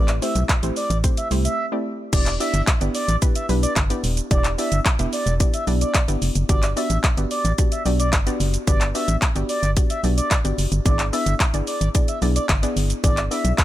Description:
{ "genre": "dance-pop", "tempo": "110 BPM", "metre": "4/4", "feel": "straight", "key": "E minor", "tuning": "A4 = 440 Hz", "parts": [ { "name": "expressive synth lead", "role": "melody", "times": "0.0-13.5 s", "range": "D5 to E5", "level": "-27 LUFS", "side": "right 1 dB", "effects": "chorus, sidechain pumping, digital delay" }, { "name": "soft round pluck", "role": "accompaniment", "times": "0.0-13.5 s", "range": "A3 to E5", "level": "-27 LUFS", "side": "left 1 dB", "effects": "chorus, sidechain pumping" }, { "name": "organ-like FM bass", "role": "bass", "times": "0.0-13.5 s", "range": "D#1 to C2", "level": "-22 LUFS", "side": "equal", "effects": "sidechain pumping" }, { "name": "house drum kit", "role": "drums", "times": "0.1-13.6 s", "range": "crash cymbal, handclaps, hi-hat, kick drum, shaker", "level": "-21 LUFS", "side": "equal", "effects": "none" } ], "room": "digital ambience", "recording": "none", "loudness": "-18 LUFS", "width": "side -14 dB against mid", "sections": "0.0-2.1 A section; 2.1-13.6 A section", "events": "drop 0.0-2.1, 2.1-13.6; break 1.6-2.1", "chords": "0.0 Am7; 2.1 Em7; 6.5 Gmaj7; 10.9 E7" }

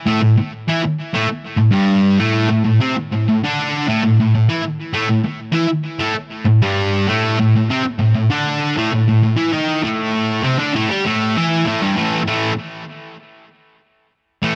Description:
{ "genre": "rock", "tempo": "98 BPM", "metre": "4/4", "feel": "straight", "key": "A minor", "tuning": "A4 = 439 Hz", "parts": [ { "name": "fuzz guitar", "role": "solo", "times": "0.1-14.6 s", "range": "G2 to G4", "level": "-17 LUFS", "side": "equal", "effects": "distortion, cassette tape, tape echo" } ], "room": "light reverb", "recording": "home recording on cassette", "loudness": "-17 LUFS", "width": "mono", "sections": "0.0-12.0 A section; 12.0-14.6 B section", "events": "none", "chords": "0.0 A5" }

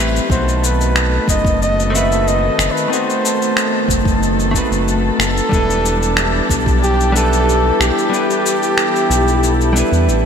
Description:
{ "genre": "sunset chillout", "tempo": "92 BPM", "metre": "4/4", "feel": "straight", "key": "unclear", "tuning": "A4 = 440 Hz", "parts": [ { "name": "direct-recorded clean electric guitar", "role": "accompaniment", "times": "0.0-10.3 s", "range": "D#3 to B4", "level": "-20 LUFS", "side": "moving between left 4 dB and right 4 dB", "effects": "auto-pan, digital delay, shimmer reverb" }, { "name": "warm chamber string section", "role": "sustained chords", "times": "0.0-10.3 s", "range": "D#3 to A4", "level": "-21 LUFS", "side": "left 1 dB", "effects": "shimmer reverb" }, { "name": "round analog bass", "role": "bass", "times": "0.0-10.3 s", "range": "E1 to E2", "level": "-18 LUFS", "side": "equal", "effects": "none" }, { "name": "electronic shaker and finger snaps", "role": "drums", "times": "0.2-10.2 s", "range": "none", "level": "-21 LUFS", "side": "left 2 dB", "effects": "overdrive, gated reverb" }, { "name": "warm flugelhorn", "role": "melody", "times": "0.3-10.1 s", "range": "G4 to E5", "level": "-19 LUFS", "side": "equal", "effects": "digital delay, shimmer reverb" }, { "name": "electronic kick drum", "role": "drums", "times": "0.3-6.8 s", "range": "none", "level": "-19 LUFS", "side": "equal", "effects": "none" } ], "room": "wet lush hall reverb, RT60 2.8 s", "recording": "bright 1980s-style digital production", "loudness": "-13 LUFS", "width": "side -7 dB against mid", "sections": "0.0-10.3 A section", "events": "kick drops out 8.1-10.3", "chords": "0.3 B7b9; 5.5 Em7" }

